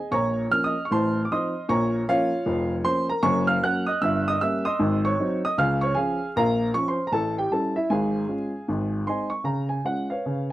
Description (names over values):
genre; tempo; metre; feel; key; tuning
jazz, stride piano; 154 BPM; 4/4; swing 63% on 8ths; Db major from 3.2 s; A4 = 440 Hz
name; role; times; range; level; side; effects
warm upright piano; solo; 0.0-10.5 s; F1 to Gb6; -22 LUFS; equal; none
room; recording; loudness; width
light reverb; dry, close 1970s-style studio recording, vinyl crackle; -22 LUFS; side -15 dB against mid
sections
0.0-9.5 A section; 9.5-10.5 B section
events
none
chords
0.1 Bbm; 0.9 F7/A; 1.7 Bbm; 3.2 Gb; 4.0 Gdim7; 4.8 Ab7; 5.6 Db; 6.3 Bbm; 7.1 A7; 7.9 Db/Ab; 8.7 Ab; 9.5 Db7